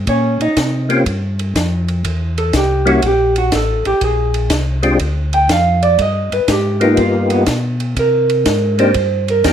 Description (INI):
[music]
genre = soul jazz organ trio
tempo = 122 BPM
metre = 4/4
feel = swing 67% on 8ths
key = Bb mixolydian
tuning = A4 = 439 Hz
[part]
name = mellow tonewheel organ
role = bass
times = 0.0-9.5 s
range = A1 to C3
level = -18 LUFS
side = equal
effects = slow rotary speaker
[part]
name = vintage hollow-body jazz guitar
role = accompaniment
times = 0.1-9.5 s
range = B3 to G5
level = -16 LUFS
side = right 2 dB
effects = none
[part]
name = compact cocktail drum kit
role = drums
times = 0.1-9.5 s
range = hi-hat, kick drum, ride cymbal, snare drum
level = -21 LUFS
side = equal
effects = none
[part]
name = percussive tonewheel organ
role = melody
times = 0.9-9.5 s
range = G3 to G4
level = -15 LUFS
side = left 2 dB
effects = slow rotary speaker, chorus vibrato
[sound]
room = moderate studio reverb, RT60 0.8 s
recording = none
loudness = -13 LUFS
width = side -9 dB against mid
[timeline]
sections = 0.0-9.5 A section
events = hollow-body jazz guitar solo 0.0-9.5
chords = 0.1 Eb13; 2.0 Edim; 4.0 Bb9; 6.0 G7alt; 8.0 Cm7